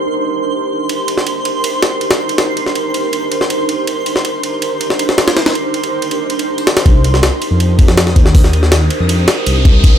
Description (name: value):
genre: drum and bass, jungle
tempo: 161 BPM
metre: 4/4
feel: straight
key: C minor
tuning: A4 = 440 Hz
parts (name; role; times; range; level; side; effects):
- ethereal airy pad; sustained chords; 0.0-10.0 s; D4 to C5; -18 LUFS; right 2 dB; ensemble chorus, built-in reverb
- twinkling granular texture; texture; 0.0-10.0 s; C6 to Eb6; -23 LUFS; right 2 dB; built-in reverb
- jungle sampler-style drum kit; drums; 0.9-9.9 s; hi-hat, kick drum, ride cymbal, snare drum; -13 LUFS; equal; none
- detuned saw bass; bass; 6.9-10.0 s; C2 to F2; -13 LUFS; equal; none
- riser; sound effects; 8.1-10.0 s; none; -24 LUFS; right 1 dB; none
room: light reverb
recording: none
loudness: -11 LUFS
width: side -10 dB against mid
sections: 0.0-6.9 A section; 6.9-10.0 B section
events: filter sweep on ambient pad 0.0-6.9; build-up 6.9-10.0; riser 8.1-10.0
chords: 0.0 Cm9